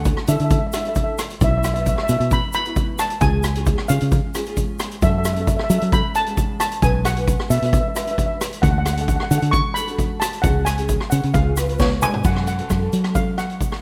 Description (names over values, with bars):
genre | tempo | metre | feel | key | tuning
calypso | 133 BPM | 4/4 | straight | unclear | A4 = 440 Hz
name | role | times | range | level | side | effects
steel pan | melody | 0.0-13.8 s | C#5 to C#6 | -26 LUFS | equal | none
nylon-string guitar | accompaniment | 0.0-13.4 s | G#3 to B4 | -32 LUFS | equal | double-tracked
fingered electric bass | bass | 0.0-13.6 s | B1 to F#3 | -22 LUFS | equal | none
egg shaker | percussion | 0.0-13.7 s | none | -38 LUFS | equal | none
street-band drum kit | drums | 0.1-13.8 s | crash cymbal, hi-hat, kick drum, rim click, snare drum, toms | -24 LUFS | equal | none
room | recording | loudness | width
light reverb, studio ambience | rough home demo mix | -20 LUFS | mono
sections
0.0-12.2 A section; 12.2-13.8 B section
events
drum fill 11.8-12.2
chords
0.0 Dsus2; 1.4 Bsus4; 3.2 C#; 5.0 F#m; 6.8 Bm; 8.6 D; 10.4 C#sus4; 11.3 C#; 12.2 F#m